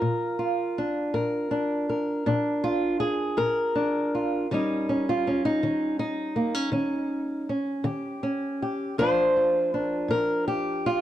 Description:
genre	acoustic country blues, solo or duo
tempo	54 BPM (dotted quarters)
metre	12/8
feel	straight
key	Bb mixolydian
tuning	A4 = 440 Hz
part	fingerpicked old ladder-braced acoustic guitar	solo	0.0-11.0 s	Bb2 to C5	-24 LUFS	equal	none
room	light reverb, small room ambience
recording	dry, close 1970s-style studio recording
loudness	-24 LUFS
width	side -12 dB against mid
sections	0.0-11.0 A section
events	none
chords	0.0 Bb7; 4.5 Eb7; 9.0 Bb

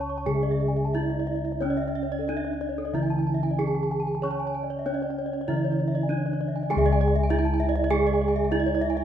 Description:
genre	Balinese gamelan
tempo	89-100 BPM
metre	4/4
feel	straight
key	C# pelog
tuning	A4 = 443 Hz
part	gamelan-type bronze metallophone	melody	0.0-9.0 s	C#4 to C#5	-28 LUFS	right 3 dB	none
part	gamelan-type bronze metallophone	accompaniment	0.0-9.0 s	C#3 to C#4	-34 LUFS	right 4 dB	none
part	gamelan-type bronze metallophone	arpeggios	0.0-9.0 s	A4-20c to C#6	-32 LUFS	left 4 dB	none
part	gamelan-type bossed gongs	bass	0.0-9.0 s	C#2 to C#5	-27 LUFS	left 2 dB	none
part	gamelan-type bronze metallophone	arpeggios	0.1-9.0 s	A4-20c to C#6	-34 LUFS	right 6 dB	none
part	mellow xiao	second line	7.6-9.0 s	A4-29c to E5+22c	-38 LUFS	right 8 dB	none
room	moderate recital hall reverb, RT60 1.8 s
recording	minimal, uncompressed stereo recording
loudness	-23 LUFS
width	side -10 dB against mid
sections	0.0-6.7 A section; 6.7-9.0 B section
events	none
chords	none

